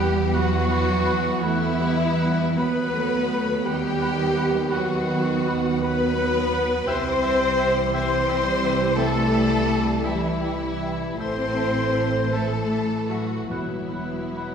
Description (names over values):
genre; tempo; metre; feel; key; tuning
cinematic, emotional film score for orchestra; 45-58 BPM (dotted quarters); 6/8; rubato; E harmonic minor; A4 = 440 Hz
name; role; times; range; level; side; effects
bright studio violin section; melody; 0.0-14.5 s; E5 to C6; -36 LUFS; left 5 dB; none
clear oboe; second line; 0.0-14.5 s; E5 to F#5; -35 LUFS; equal; none
mellow flute section; second line; 0.0-14.5 s; G5 to B5; -38 LUFS; left 2 dB; none
rich studio violin section; second line; 0.0-14.5 s; E4 to C5; -26 LUFS; left 1 dB; none
warm clarinet; second line; 0.0-14.5 s; E4 to C5; -31 LUFS; left 1 dB; none
warm studio viola section; accompaniment; 0.0-14.5 s; D#3 to B3; -28 LUFS; right 2 dB; none
mellow French horn section; sustained chords; 0.0-14.5 s; D#3 to E4; -30 LUFS; equal; none
rich studio cello section; bass; 0.0-14.5 s; E3 to C4; -27 LUFS; right 1 dB; none
rich studio double bass section; bass; 0.0-14.5 s; E1 to E2; -29 LUFS; right 2 dB; none
timpani; percussion; 13.5-14.5 s; E2; -41 LUFS; left 3 dB; none
room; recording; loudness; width
wet scoring stage reverb, RT60 1.9 s; heard from further back in the room; -20 LUFS; side -7 dB against mid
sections
0.0-14.5 A section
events
none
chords
0.0 Emadd9; 2.6 B/D#; 6.9 C; 11.2 Am; 13.5 Esus2